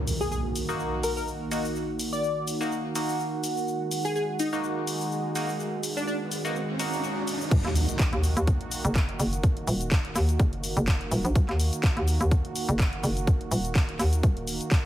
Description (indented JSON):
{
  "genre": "bass house",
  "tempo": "125 BPM",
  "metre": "4/4",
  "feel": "swing 55% on 16ths",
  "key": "Eb minor",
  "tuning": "A4 = 438 Hz",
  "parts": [
    { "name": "sweeping resonant pad", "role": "sustained chords", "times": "0.0-14.9 s", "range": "Eb3 to Gb4", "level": "-34 LUFS", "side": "right 2 dB", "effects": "chorus, sidechain pumping" },
    { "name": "impact and riser", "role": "sound effects", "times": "0.0-9.4 s", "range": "none", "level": "-34 LUFS", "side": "equal", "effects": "none" },
    { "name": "deep dark ambient pad", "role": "texture", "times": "0.0-7.5 s", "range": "Eb4 to Gb5", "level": "-35 LUFS", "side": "equal", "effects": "chorus, built-in reverb, sidechain pumping" },
    { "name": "big-room dance drum kit", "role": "drums", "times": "0.1-14.8 s", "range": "crash cymbal, handclaps, hi-hat, shaker", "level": "-34 LUFS", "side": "left 1 dB", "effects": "small room ambience" },
    { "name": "plucky unison lead", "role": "melody", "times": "0.2-6.2 s", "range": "D4 to D5", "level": "-30 LUFS", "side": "left 2 dB", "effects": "analog chorus, digital delay" },
    { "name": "band-passed chord stab", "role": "stabs", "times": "0.7-7.5 s", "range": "Bb3 to Gb4", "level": "-32 LUFS", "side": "equal", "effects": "phaser, sidechain pumping, digital delay" },
    { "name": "hollow knocking FM bass", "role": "bass", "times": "7.5-14.6 s", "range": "Eb1 to Eb2", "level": "-26 LUFS", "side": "equal", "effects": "tube saturation, sidechain pumping" },
    { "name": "electronic kick drum", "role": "drums", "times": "7.5-14.8 s", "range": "none", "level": "-24 LUFS", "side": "equal", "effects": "small room ambience" }
  ],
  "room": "light reverb",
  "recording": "heavily compressed radio sound, multiband compression",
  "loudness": "-24 LUFS",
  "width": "side -13 dB against mid",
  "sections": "0.0-7.5 A section; 7.5-14.9 B section",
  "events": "impact 0.0-1.8, 7.5-9.4; riser 5.6-7.5; drop 7.5-14.9",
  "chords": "0.0 Ebm",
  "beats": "0.32 0.80 1.27 | 1.75 2.23 2.71 3.19 | 3.67 4.16 4.63 5.12 | 5.59 6.08 6.55 7.04 | 7.51 8.00 8.47 8.96 | 9.44 9.91 10.39 10.88 | 11.36 11.84 12.31 12.79 | 13.28 13.76 14.23 14.71"
}